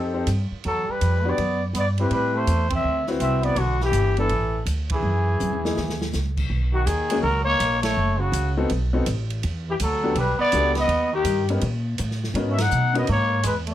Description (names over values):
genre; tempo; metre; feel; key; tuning
jazz, small-group swing and bop; 164 BPM; 4/4; swing 64% on 8ths; B major from 6.5 s; A4 = 440 Hz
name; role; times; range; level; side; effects
growling trumpet; melody; 0.0-13.7 s; F#4 to F#5; -24 LUFS; left 2 dB; none
clear baby grand piano; accompaniment; 0.0-13.1 s; A#3 to C5; -26 LUFS; left 3 dB; none
upright bass; bass; 0.0-13.7 s; F#1 to B2; -24 LUFS; equal; none
open jazz drum kit; drums; 0.3-13.7 s; crash cymbal, hi-hat, kick drum, ride cymbal, snare drum, toms; -33 LUFS; right 1 dB; none
trombone with metal mute; second line; 0.7-13.7 s; C#3 to D#4; -29 LUFS; right 3 dB; none
room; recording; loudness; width
light reverb; none; -20 LUFS; side -12 dB against mid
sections
0.0-6.5 A section; 6.5-13.7 B section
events
band accent 2.7, 4.8, 7.8, 12.5; drum fill 5.4-6.1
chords
0.0 F9; 0.6 Em9; 2.1 Am7; 2.8 D13; 3.6 G69; 5.0 F#7sus2; 6.5 Bmaj13; 8.0 F#m; 8.7 B7b9; 9.4 Em11; 10.9 D#; 12.3 G#m11